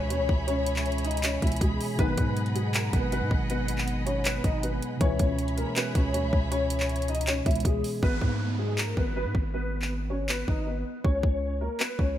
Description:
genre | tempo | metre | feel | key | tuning
hip hop, trap | 159 BPM | 4/4 | half-time | G# minor | A4 = 440 Hz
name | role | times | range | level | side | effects
dark grand piano | melody | 0.0-12.2 s | G#3 to E5 | -31 LUFS | left 1 dB | ensemble chorus, low-pass filter
mellow tine electric piano | accompaniment | 0.0-8.1 s | B2 to D#4 | -34 LUFS | right 2 dB | medium stereo tremolo, low-pass filter
warm symphonic string section | sustained chords | 0.0-8.0 s | G#4 to B5 | -37 LUFS | equal | none
long sustained 808-style bass | bass | 0.0-12.2 s | G#1 to G#2 | -30 LUFS | equal | none
trap drum kit | drums | 0.1-12.1 s | handclaps, hi-hat, kick drum | -28 LUFS | equal | none
mellow brass ensemble | stabs | 2.0-2.3, 5.0-5.4 s | B1 to E3 | -38 LUFS | left 8 dB | digital delay
downlifter | sound effects | 8.0-11.0 s | none | -40 LUFS | right 3 dB | none
room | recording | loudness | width
light reverb, small room ambience | bright 1980s-style digital production | -25 LUFS | side -12 dB against mid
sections
0.0-8.0 A section; 8.0-12.2 B section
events
hi-hats muted 8.0-12.2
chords
0.0 C#m7; 2.0 G#m7; 5.0 C#m7; 8.0 G#m; 11.0 C#7(no3)

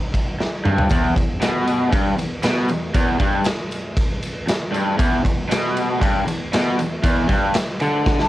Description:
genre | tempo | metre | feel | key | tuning
garage rock duo or trio | 117 BPM | 4/4 | straight | unclear | A4 = 439 Hz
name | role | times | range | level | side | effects
raw garage drum kit | drums | 0.1-8.3 s | kick drum, ride cymbal, snare drum, toms | -20 LUFS | equal | cassette tape
raw garage guitar | riff | 0.4-8.3 s | E2 to D3 | -19 LUFS | equal | overdrive
tambourine | percussion | 0.9-8.1 s | none | -41 LUFS | left 6 dB | none
room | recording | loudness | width
little or no reverb | home recording on cassette | -17 LUFS | side -15 dB against mid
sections
0.0-8.3 A section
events
drum fill 0.4-0.9, 8.1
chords
none

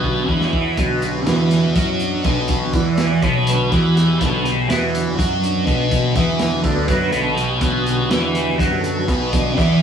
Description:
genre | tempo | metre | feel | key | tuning
psychedelic rock | 246 BPM (eighths) | 7/8 | straight | B minor | A4 = 440 Hz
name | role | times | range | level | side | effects
tonewheel organ | sustained chords | 0.0-9.8 s | D3 to D5 | -24 LUFS | right 3 dB | chorus vibrato, fast rotary speaker
thick fuzz guitar | riff | 0.0-9.8 s | B2 to F#4 | -18 LUFS | equal | distortion, phaser
fuzz picked electric bass | bass | 0.0-9.8 s | B1 to F#2 | -23 LUFS | equal | overdrive
pedal harmonium | drone | 0.0-9.8 s | B2 to F#3 | -31 LUFS | left 2 dB | none
crunchy breakbeat drum kit | drums | 0.0-9.7 s | hi-hat, kick drum, snare drum | -23 LUFS | equal | none
congas | percussion | 0.2-9.6 s | none | barely audible | none | none
room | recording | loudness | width
moderate stone room reverb, RT60 1.1 s | band playing live in one room, studio reverb | -15 LUFS | side -8 dB against mid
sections
0.0-9.8 A section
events
tonewheel organ solo 0.0-9.8; drum fill 0.0-0.8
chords
0.0 Bm

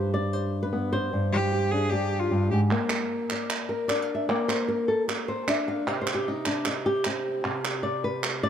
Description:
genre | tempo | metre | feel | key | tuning
flamenco | 152 BPM | 4/4 | straight | unclear | A4 = 440 Hz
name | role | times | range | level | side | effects
flamenco guitar | melody | 0.0-8.5 s | G2 to F5 | -26 LUFS | left 1 dB | none
bright cello | second line | 1.3-2.6 s | F4 to Ab4 | -28 LUFS | equal | none
palmas hand claps | percussion | 2.7-8.4 s | none | -30 LUFS | right 4 dB | none
room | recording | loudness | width
moderate plate reverb, RT60 2.8 s | dark, warm production | -24 LUFS | side -9 dB against mid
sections
0.0-2.7 A section; 2.7-8.5 B section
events
nylon-string guitar solo 2.7-8.5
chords
0.0 G; 1.1 Gsus4; 2.7 Bb; 5.9 N.C.

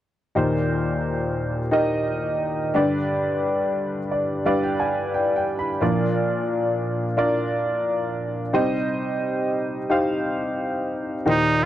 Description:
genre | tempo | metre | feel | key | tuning
pop | 88 BPM | 4/4 | straight | Eb major | A4 = 438 Hz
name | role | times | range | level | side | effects
warm upright piano | accompaniment | 0.4-11.7 s | Eb2 to B5 | -21 LUFS | equal | none
brilliant trumpet | melody | 11.3-11.7 s | Eb4 | -19 LUFS | right 3 dB | none
room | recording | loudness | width
light reverb | dry, close 1970s-style studio recording | -21 LUFS | side -12 dB against mid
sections
0.4-11.3 A section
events
upright piano fill 3.8-5.8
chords
0.4 Eb6; 2.7 G; 5.8 Bb; 8.5 Cm

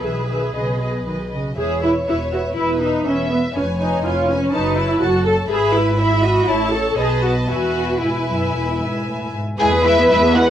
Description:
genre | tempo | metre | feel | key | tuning
quick classical-period movement for string orchestra | 112-125 BPM | 4/4 | rubato | E major | A4 = 440 Hz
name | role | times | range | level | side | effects
dark symphonic violin section | melody | 0.0-10.5 s | A4 to G#5 | -24 LUFS | left 1 dB | none
warm symphonic violin section | second line | 0.0-10.4 s | E4 to B5 | -25 LUFS | equal | none
dark symphonic viola section | accompaniment | 0.0-10.5 s | G#3 to A4 | -20 LUFS | equal | none
dark symphonic cello section | bass | 0.0-10.5 s | E2 to B4 | -23 LUFS | equal | none
warm symphonic double bass section | bass | 0.0-10.5 s | E1 to E2 | -24 LUFS | right 1 dB | none
room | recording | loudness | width
moderate large studio reverb, RT60 0.9 s | worn, warbling old tape, cassette tape, warbly pitch drift | -16 LUFS | side -10 dB against mid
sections
0.0-9.6 A section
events
none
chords
0.0 E/B; 0.6 B; 1.6 E5; 3.6 C#7/E#; 4.5 F#m; 5.5 E/G#; 6.5 A; 7.0 B7; 7.5 E

